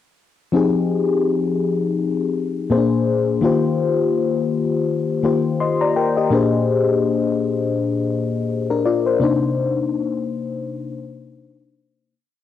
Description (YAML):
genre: R&B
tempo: 83 BPM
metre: 4/4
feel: swing 58% on 16ths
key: F dorian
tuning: A4 = 438 Hz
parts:
  - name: mellow FM electric piano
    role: solo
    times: 0.5-12.1 s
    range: Bb2 to C6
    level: -17 LUFS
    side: left 4 dB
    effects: chorus, cassette tape
room: little or no reverb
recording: home recording on cassette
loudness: -17 LUFS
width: side -11 dB against mid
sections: 0.5-12.1 verse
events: fade-out 9.2-12.1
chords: 0.5 Fm9; 2.7 Bb7; 3.4 Eb69; 6.3 Bb13; 9.2 Cm9